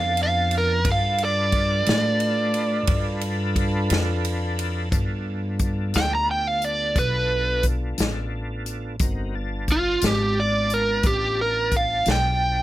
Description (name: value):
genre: slow blues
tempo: 59 BPM (dotted quarters)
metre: 12/8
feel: straight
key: G mixolydian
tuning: A4 = 440 Hz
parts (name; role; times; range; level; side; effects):
- overdriven electric guitar; melody; 0.0-12.6 s; F4 to Bb5; -22 LUFS; right 1 dB; none
- tonewheel organ; sustained chords; 0.0-12.6 s; B3 to A5; -31 LUFS; equal; chorus vibrato, slow rotary speaker
- upright bass; bass; 0.0-12.6 s; G1 to A2; -25 LUFS; equal; none
- natural country drum kit; drums; 0.2-12.2 s; hi-hat, kick drum, ride cymbal, snare drum; -26 LUFS; left 1 dB; none
room: little or no reverb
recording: none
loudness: -20 LUFS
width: side -15 dB against mid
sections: 0.0-4.9 A section; 4.9-12.6 B section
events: overdriven electric guitar solo 0.0-4.9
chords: 0.0 G7